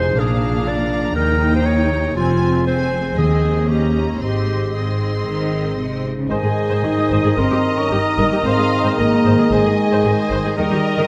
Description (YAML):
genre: classical, dramatic, fast romantic movement for symphony orchestra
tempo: 111-122 BPM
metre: 4/4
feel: rubato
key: Ab major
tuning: A4 = 440 Hz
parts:
  - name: clear symphonic violin section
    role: melody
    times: 0.0-11.1 s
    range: Bb4 to C6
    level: -34 LUFS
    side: equal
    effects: none
  - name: clear clarinet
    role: second line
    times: 0.0-11.1 s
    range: F4 to D5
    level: -26 LUFS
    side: equal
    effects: none
  - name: warm symphonic violin section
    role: second line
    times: 0.0-11.1 s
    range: Eb5 to Bb5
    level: -32 LUFS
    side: equal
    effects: none
  - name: rich symphonic viola section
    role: accompaniment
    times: 0.0-11.1 s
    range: C4 to Eb5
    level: -28 LUFS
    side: equal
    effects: none
  - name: concert harp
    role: arpeggios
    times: 0.0-11.1 s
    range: F2 to Eb5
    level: -28 LUFS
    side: equal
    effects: none
  - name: rich studio double bass section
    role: bass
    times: 0.0-10.6 s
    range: F1 to Eb2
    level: -26 LUFS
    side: equal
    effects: none
  - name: rich symphonic cello section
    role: bass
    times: 0.0-11.0 s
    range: Eb2 to Eb3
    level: -25 LUFS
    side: equal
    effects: none
  - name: timpani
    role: percussion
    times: 3.2-3.7 s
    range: Eb3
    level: -24 LUFS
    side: equal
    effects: none
  - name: clear oboe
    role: second line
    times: 6.3-11.1 s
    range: Eb5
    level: -31 LUFS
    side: equal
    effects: none
  - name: silver concert flute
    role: second line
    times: 6.3-11.1 s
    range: G5 to Eb6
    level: -28 LUFS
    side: equal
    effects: none
  - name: dark bassoon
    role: accompaniment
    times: 6.3-11.1 s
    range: Eb3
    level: -27 LUFS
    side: equal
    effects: none
  - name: mellow French horn section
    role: sustained chords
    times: 6.3-11.1 s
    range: G3 to Eb4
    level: -22 LUFS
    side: equal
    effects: none
room: moderate scoring stage reverb, RT60 1.7 s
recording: none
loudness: -18 LUFS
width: mono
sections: 0.0-6.3 A section; 6.3-11.1 B section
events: none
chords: 0.2 Bb7; 1.2 Eb7; 2.2 Fm; 3.2 Ab/Eb; 3.7 Eb7; 4.2 Ab; 7.4 Eb/G; 8.4 Ab; 10.6 Eb